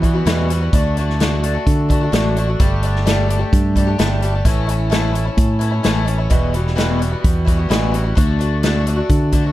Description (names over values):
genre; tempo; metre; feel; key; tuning
folk rock and heartland rock; 129 BPM; 4/4; straight; D major; A4 = 440 Hz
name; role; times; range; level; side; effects
picked twelve-string acoustic guitar; accompaniment; 0.0-9.5 s; E2 to G4; -21 LUFS; left 2 dB; none
fingered electric bass; bass; 0.0-9.5 s; E1 to E3; -18 LUFS; equal; none
natural country drum kit; drums; 0.0-9.4 s; hi-hat, kick drum, snare drum; -18 LUFS; equal; none
room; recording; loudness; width
little or no reverb; dark, warm production; -14 LUFS; side -15 dB against mid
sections
0.0-9.5 A section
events
none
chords
0.0 Emadd9; 0.7 D; 2.6 Gsus2; 4.5 A; 6.3 Emadd9; 8.2 D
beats
0.27 | 0.74 1.20 1.67 2.13 | 2.59 3.06 3.52 3.99 | 4.45 4.92 5.38 5.85 | 6.31 6.78 7.24 7.71 | 8.17 8.64 9.10